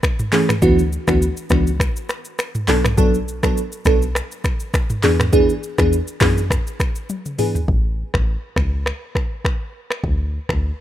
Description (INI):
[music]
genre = afrobeats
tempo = 102 BPM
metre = 4/4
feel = swing 55% on 16ths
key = A major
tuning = A4 = 440 Hz
[part]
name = afro-pop drum kit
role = drums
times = 0.0-10.6 s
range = finger snaps, handclaps, hi-hat, kick drum, rim click, shaker, toms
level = -20 LUFS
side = equal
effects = none
[part]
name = crystalline FM electric piano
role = accompaniment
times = 0.3-7.6 s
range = E3 to A4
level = -18 LUFS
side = right 1 dB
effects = chorus, phaser
[part]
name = deep log drum bass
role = bass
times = 0.6-10.7 s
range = A1 to F#2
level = -20 LUFS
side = equal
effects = none
[sound]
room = digital ambience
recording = rough home demo mix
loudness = -17 LUFS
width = side -12 dB against mid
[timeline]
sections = 0.0-7.7 A section; 7.7-10.8 B section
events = drum fill 7.1-7.7; break 7.7-10.8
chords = 0.0 Amaj7; 0.6 D69; 2.7 Bm7; 5.0 E7; 7.7 A; 10.0 N.C.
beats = 0.03 | 0.62 1.21 1.80 2.39 | 2.98 3.56 4.15 4.74 | 5.33 5.92 6.50 7.09 | 7.68 8.27 8.86 9.45 | 10.03 10.62